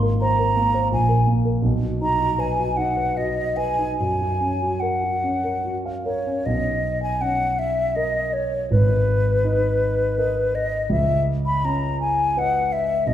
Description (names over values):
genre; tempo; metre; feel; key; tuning
classical, impressionist duo for flute and grand piano; 71-86 BPM; 3/4; rubato; F# major, B major from 6.5 s; A4 = 440 Hz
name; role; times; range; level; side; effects
dark concert grand piano; accompaniment; 0.0-13.1 s; G#1 to E#5; -22 LUFS; right 1 dB; none
mellow silver concert flute; melody; 0.2-13.1 s; B4 to B5; -22 LUFS; left 1 dB; none
room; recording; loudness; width
wet recital hall reverb, RT60 1.4 s; heard from further back in the room; -19 LUFS; side -11 dB against mid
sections
0.0-6.5 A section; 6.5-13.1 B section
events
none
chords
0.0 G#add9; 0.9 N.C.; 1.6 B; 4.0 F#maj7; 6.5 Bmaj9; 8.7 G#madd9; 10.9 C#sus2